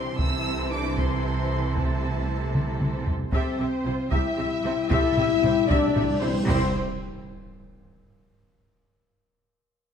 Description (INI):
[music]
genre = cinematic, epic orchestral film score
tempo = 76 BPM (dotted quarters)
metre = 6/8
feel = straight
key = C major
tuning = A4 = 440 Hz
[part]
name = warm symphonic violin section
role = melody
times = 0.0-6.8 s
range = F4 to E6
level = -36 LUFS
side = left 1 dB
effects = none
[part]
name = warm studio violin section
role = second line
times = 0.0-6.8 s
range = G4 to E5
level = -33 LUFS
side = left 2 dB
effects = none
[part]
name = rich symphonic viola section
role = accompaniment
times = 0.0-6.8 s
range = E3 to E5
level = -33 LUFS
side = right 1 dB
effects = none
[part]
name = mellow French horn section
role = sustained chords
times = 0.0-6.7 s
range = A3 to E4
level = -27 LUFS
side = left 6 dB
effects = none
[part]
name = rich symphonic cello section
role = bass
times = 0.0-6.8 s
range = C2 to C3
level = -32 LUFS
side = right 3 dB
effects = none
[part]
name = warm symphonic double bass section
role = bass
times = 0.0-6.8 s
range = C2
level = -31 LUFS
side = right 3 dB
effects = none
[part]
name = solo taiko drums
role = drums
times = 0.2-6.6 s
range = none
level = -27 LUFS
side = equal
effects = none
[part]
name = timpani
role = percussion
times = 0.2-6.7 s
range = C3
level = -34 LUFS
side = right 1 dB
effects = none
[part]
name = cymbal swell and impact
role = sound effects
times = 6.1-8.1 s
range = none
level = -37 LUFS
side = right 1 dB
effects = none
[sound]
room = moderate scoring stage reverb, RT60 1.6 s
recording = dark, warm production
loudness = -22 LUFS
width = side -8 dB against mid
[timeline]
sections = 0.0-3.3 A section; 3.3-6.5 B section; 6.5-8.1 C section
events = timpani fill 0.2-3.3, 3.3-6.5; drum fill 2.5-3.3; cymbal swell 6.1-6.5; impact 6.5-8.1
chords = 0.2 Am/C; 3.3 C